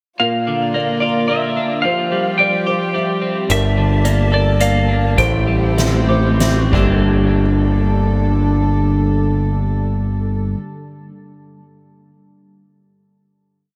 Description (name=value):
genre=post-rock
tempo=88-109 BPM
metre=3/4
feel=straight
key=G dorian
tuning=A4 = 440 Hz
part: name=clean lap steel guitar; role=melody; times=0.2-6.4 s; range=D5 to G5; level=-22 LUFS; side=equal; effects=lush chorus, analog delay
part: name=dark studio string section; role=sustained chords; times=0.2-10.5 s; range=F3 to A5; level=-27 LUFS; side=equal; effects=none
part: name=felt-muted upright piano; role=arpeggios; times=0.2-7.4 s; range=G4 to E5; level=-28 LUFS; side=equal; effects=analog delay
part: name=twelve-string electric guitar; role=arpeggios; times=0.2-10.6 s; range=G2 to A4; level=-22 LUFS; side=equal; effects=subtle chorus, analog delay
part: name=growling picked electric bass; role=bass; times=3.5-10.5 s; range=G1 to A1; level=-19 LUFS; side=equal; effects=overdrive
part: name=soft-mallet drum kit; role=drums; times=3.5-6.9 s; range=crash cymbal, hi-hat, kick drum, snare drum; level=-25 LUFS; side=equal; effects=none
room=wet church reverb, RT60 3.8 s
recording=dreamy mix soaked in reverb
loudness=-16 LUFS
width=mono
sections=0.2-7.1 A section; 7.1-11.2 final hit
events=slowing down 3.5-7.1; drum fill 6.7-7.1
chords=0.2 Bb; 1.9 Fsus2; 3.5 Gmadd9; 5.2 Am7; 6.7 Gmadd9